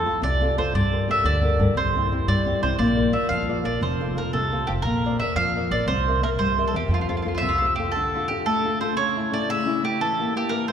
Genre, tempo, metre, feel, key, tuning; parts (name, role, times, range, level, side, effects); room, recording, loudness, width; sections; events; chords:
italian folk, Italian serenade; 117 BPM (dotted quarters); 6/8; rubato; F major; A4 = 440 Hz
mandolin; melody; 0.0-10.7 s; F4 to F5; -24 LUFS; right 2 dB
flamenco guitar; accompaniment; 0.0-10.7 s; C3 to E5; -26 LUFS; left 3 dB
upright bass; bass; 0.0-7.9 s; F1 to G2; -25 LUFS; equal
wet church reverb, RT60 3.6 s; recorded in a church or concert hall; -20 LUFS; side -8 dB against mid
0.0-7.9 A section; 7.9-10.7 B section
0.0 F; 0.7 Gmadd9; 1.8 C; 2.8 Bb; 3.8 F; 4.9 Bbadd9; 5.9 C7; 6.9 F; 7.9 Dm; 9.0 A/C#; 10.0 Edim